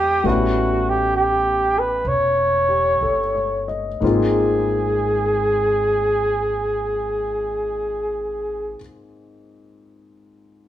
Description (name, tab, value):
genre	jazz ballad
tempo	58-68 BPM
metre	4/4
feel	swing 68% on 8ths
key	Ab major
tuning	A4 = 440 Hz
part	warm flugelhorn	melody	0.0-8.8 s	Gb4 to C#5	-19 LUFS	right 1 dB	none
part	warm grand piano	accompaniment	0.0-10.7 s	Ab2 to Eb5	-25 LUFS	left 4 dB	none
part	upright bass	bass	0.0-8.7 s	E1 to Fb2	-28 LUFS	equal	none
room	moderate large studio reverb, RT60 1.2 s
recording	band playing live in one room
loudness	-18 LUFS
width	side -12 dB against mid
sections	0.2-4.0 A section; 4.0-8.1 B section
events	slowing down 0.0-4.0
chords	0.2 A7; 4.0 Ab69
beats	| 0.25 1.14 2.05 3.01 | 4.02 5.06 6.08 7.11